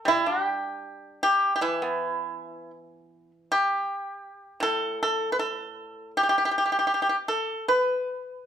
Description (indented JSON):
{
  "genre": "chinese traditional, Chinese solo plucked strings",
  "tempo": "79 BPM",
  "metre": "4/4",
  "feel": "rubato",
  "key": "G gong mode",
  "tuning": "A4 = 443 Hz",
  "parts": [
    { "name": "pipa", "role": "solo", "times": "0.0-8.5 s", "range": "A2 to B4", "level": "-24 LUFS", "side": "equal", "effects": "none" }
  ],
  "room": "moderate large studio reverb, RT60 1.0 s",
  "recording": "band playing live in one room",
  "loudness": "-23 LUFS",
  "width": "side -9 dB against mid",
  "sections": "0.0-8.5 A section",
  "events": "none",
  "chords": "none",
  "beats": "| 0.07 0.85 1.62 2.37 | 3.12 3.87 4.62 5.38 | 6.14 6.89 7.67"
}